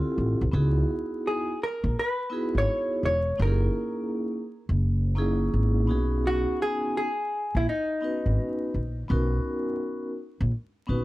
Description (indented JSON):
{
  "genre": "hip hop, jazz-hop",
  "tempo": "84 BPM",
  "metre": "4/4",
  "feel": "swing 65% on 16ths",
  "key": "unclear",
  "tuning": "A4 = 441 Hz",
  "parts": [
    { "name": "vibraphone with soft mallets", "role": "accompaniment", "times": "0.0-11.0 s", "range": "A#3 to B4", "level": "-29 LUFS", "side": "equal", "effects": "none" },
    { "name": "upright bass", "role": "bass", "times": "0.2-11.0 s", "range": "E1 to C#2", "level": "-24 LUFS", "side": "equal", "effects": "none" },
    { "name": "vintage hollow-body jazz guitar", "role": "melody", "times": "1.3-11.0 s", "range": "D#4 to C#5", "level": "-28 LUFS", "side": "equal", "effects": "none" }
  ],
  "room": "small room ambience",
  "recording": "dry, gritty hardware recording, vinyl crackle",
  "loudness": "-24 LUFS",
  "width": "side -18 dB against mid",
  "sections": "0.0-11.0 A section",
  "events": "none",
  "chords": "0.0 Dm11 (rootless); 0.5 C#m11; 3.4 F#13; 5.9 B6; 9.1 Bmaj9"
}